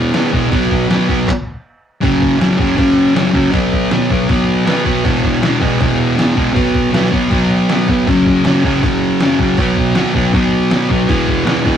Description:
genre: garage rock duo or trio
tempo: 159 BPM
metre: 4/4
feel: straight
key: unclear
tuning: A4 = 437 Hz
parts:
  - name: thick fuzz guitar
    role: riff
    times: 0.0-11.8 s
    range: E2 to B3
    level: -12 LUFS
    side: equal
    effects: distortion
  - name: trip hop sampler-style drum kit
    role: drums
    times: 0.1-11.8 s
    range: crash cymbal, handclaps, kick drum, snare drum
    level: -18 LUFS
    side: equal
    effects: overdrive
room: moderate small room ambience, RT60 0.5 s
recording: rough rehearsal-room recording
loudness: -11 LUFS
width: side -9 dB against mid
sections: 0.0-2.0 A section; 2.0-11.8 A section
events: stop 1.3-2.0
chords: 0.0 E5; 0.5 B5; 1.3 N.C.; 2.0 F#5; 3.5 B5; 5.0 E5; 6.6 B5; 8.1 F#5; 9.6 B5; 11.1 E5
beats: 0.14 | 0.52 0.89 1.27 1.65 | 2.02 2.40 2.78 3.16 | 3.54 3.91 4.29 4.67 | 5.05 5.42 5.80 6.18 | 6.56 6.94 7.31 7.69 | 8.07 8.45 8.83 9.20 | 9.58 9.96 10.34 10.72 | 11.10 11.47

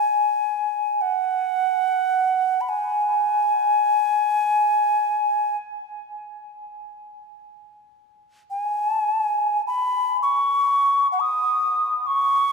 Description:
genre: world meditative, free-time meditation music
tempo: free time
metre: none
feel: none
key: G# minor pentatonic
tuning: A4 = 440 Hz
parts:
  - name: bright alto ocarina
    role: solo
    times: 0.0-12.5 s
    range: F#5 to D#6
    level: -19 LUFS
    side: equal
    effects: ping-pong delay
room: wet cathedral reverb, RT60 5.6 s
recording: in a vast, echoing space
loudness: -19 LUFS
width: side -4 dB against mid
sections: 0.0-7.4 A section; 7.4-12.5 A section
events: none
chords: none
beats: free time

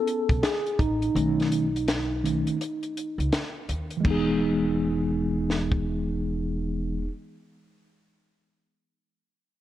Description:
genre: hip hop, jazz-hop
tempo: 83 BPM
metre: 4/4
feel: swing 62% on 16ths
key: E major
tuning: A4 = 439 Hz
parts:
  - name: mellow tine electric piano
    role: accompaniment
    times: 0.0-7.1 s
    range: D#3 to A4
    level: -25 LUFS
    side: equal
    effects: medium stereo tremolo
  - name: compact cocktail drum kit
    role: drums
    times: 0.1-5.8 s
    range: crash cymbal, hi-hat, kick drum, snare drum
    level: -28 LUFS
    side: equal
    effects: none
  - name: upright bass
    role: bass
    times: 0.3-7.1 s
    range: E1 to D#2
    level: -31 LUFS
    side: equal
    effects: none
room: light reverb, studio ambience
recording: worn, warbling old tape, cassette tape, warbly pitch drift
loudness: -24 LUFS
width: side -13 dB against mid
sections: 0.0-4.0 A section; 4.0-6.9 B section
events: tine electric piano solo 0.0-4.0; kick muted 1.2-4.0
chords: 0.0 Amaj9; 1.2 B7; 4.0 Emaj7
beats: 0.43 | 1.15 1.88 2.60 3.32 | 4.04 4.77 5.49 6.21

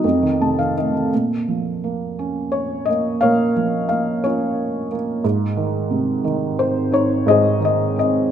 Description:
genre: classical, lyrical solo piano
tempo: 58 BPM (dotted quarters)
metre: 6/8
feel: uneven beats, rubato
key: Bb minor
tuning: A4 = 440 Hz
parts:
  - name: felt-muted upright piano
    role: solo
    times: 0.0-8.3 s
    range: F2 to A5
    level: -17 LUFS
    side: equal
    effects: none
room: wet recital hall reverb, RT60 1.6 s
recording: minimal, uncompressed stereo recording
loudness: -17 LUFS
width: side -9 dB against mid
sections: 0.0-1.1 A section; 1.1-8.3 B section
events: felt piano fill 0.0-1.1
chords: 0.0 F7; 1.1 Bbm; 5.2 Ab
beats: 0.04 | 1.12 2.19 | 3.23 4.24 | 5.24 6.25 | 7.28

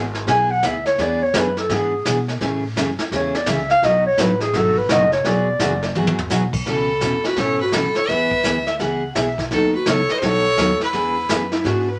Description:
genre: country, western swing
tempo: 169 BPM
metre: 4/4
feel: swing 64% on 8ths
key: A major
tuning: A4 = 438 Hz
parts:
  - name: picked steel-string acoustic guitar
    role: accompaniment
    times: 0.0-11.9 s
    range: B2 to A4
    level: -25 LUFS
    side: equal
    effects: none
  - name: upright bass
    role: bass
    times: 0.0-12.0 s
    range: E1 to B2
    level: -30 LUFS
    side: equal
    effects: none
  - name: vintage brush drum kit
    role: drums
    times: 0.1-12.0 s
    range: brushed snare drum, crash cymbal, hi-hat, kick drum, snare drum, toms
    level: -27 LUFS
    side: equal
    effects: none
  - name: dark clarinet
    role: second line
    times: 0.3-11.5 s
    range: D#4 to G#5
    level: -22 LUFS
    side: equal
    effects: none
  - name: clear fiddle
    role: melody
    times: 6.7-11.5 s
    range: A4 to E5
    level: -24 LUFS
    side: equal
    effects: none
  - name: clean lap steel guitar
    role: second line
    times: 8.7-12.0 s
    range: E4 to F#5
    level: -26 LUFS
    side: equal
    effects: none
room: wet studio ambience, RT60 0.5 s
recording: none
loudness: -19 LUFS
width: mono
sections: 0.0-6.7 A section; 6.7-12.0 B section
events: clarinet solo 0.0-6.7; drum fill 6.0-6.3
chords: 0.0 E; 1.0 E7; 2.4 Amaj7; 3.8 B7; 5.2 Eadd9; 6.7 Aadd9; 8.1 E; 9.5 B7; 10.9 E7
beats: 0.28 0.63 | 0.99 1.34 1.70 2.05 | 2.40 2.76 3.11 3.47 | 3.82 4.18 4.53 4.89 | 5.24 5.60 5.95 6.31 | 6.66 7.02 7.37 7.73 | 8.09 8.44 8.80 9.15 | 9.51 9.87 10.22 10.58 | 10.93 11.29 11.65

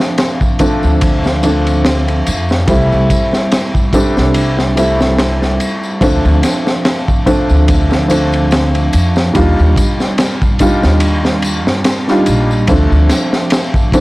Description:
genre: trip hop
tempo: 72 BPM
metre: 4/4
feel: swing 55% on 16ths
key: D minor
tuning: A4 = 440 Hz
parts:
  - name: felt-muted upright piano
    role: accompaniment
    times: 0.0-14.0 s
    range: F3 to F4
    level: -14 LUFS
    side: equal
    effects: harmonic tremolo, low-pass filter, tape echo
  - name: crunchy breakbeat drum kit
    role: drums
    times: 0.0-14.0 s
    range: kick drum, ride cymbal, snare drum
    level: -15 LUFS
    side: equal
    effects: none
  - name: tambourine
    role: percussion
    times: 0.2-14.0 s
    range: none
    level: -30 LUFS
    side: left 3 dB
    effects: none
  - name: upright bass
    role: bass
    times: 0.8-13.1 s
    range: Bb1 to G2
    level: -14 LUFS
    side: equal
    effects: transformer saturation
  - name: warbly tape-like pad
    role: sustained chords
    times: 12.7-14.0 s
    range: none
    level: barely audible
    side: none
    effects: none
room: little or no reverb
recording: blown-out, overdriven recording, vinyl crackle, overdrive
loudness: -10 LUFS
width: side -20 dB against mid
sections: 0.0-14.0 A section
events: none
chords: 0.0 Dm7; 2.7 Am7/C; 6.0 Dm7; 9.3 Ebmaj9; 12.7 Dm7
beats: 0.18 1.01 1.85 | 2.68 3.52 4.35 5.18 | 6.01 6.85 7.68 8.52 | 9.35 10.18 11.02 11.85 | 12.68 13.52

